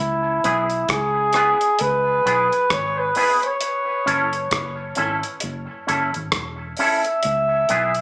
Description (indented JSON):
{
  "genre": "roots reggae",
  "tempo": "66 BPM",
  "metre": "4/4",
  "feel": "swing 59% on 16ths",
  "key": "unclear",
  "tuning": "A4 = 440 Hz",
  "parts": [
    { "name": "mellow flugelhorn", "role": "melody", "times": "0.0-8.0 s", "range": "E4 to E5", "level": "-20 LUFS", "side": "equal", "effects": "tape echo, slapback echo" },
    { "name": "vintage muted fingered electric bass", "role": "bass", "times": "0.0-8.0 s", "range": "E1 to C#2", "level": "-30 LUFS", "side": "equal", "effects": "none" },
    { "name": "electric guitar with an envelope filter", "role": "accompaniment", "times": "0.4-7.9 s", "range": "B3 to A4", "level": "-23 LUFS", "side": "equal", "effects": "ensemble chorus, tape echo, plate reverb, slapback echo" },
    { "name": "damped 70s drum kit", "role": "drums", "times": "0.4-8.0 s", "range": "hi-hat, kick drum, rim click", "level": "-25 LUFS", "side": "equal", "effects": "none" }
  ],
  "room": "moderate club reverb, RT60 0.6 s",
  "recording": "live gig heard through the venue's PA, club reverb, small speaker sound",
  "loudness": "-18 LUFS",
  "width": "side -26 dB against mid",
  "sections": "0.0-8.0 A section",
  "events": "none",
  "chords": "0.0 C#m7; 3.6 F#m7; 7.2 C#m7"
}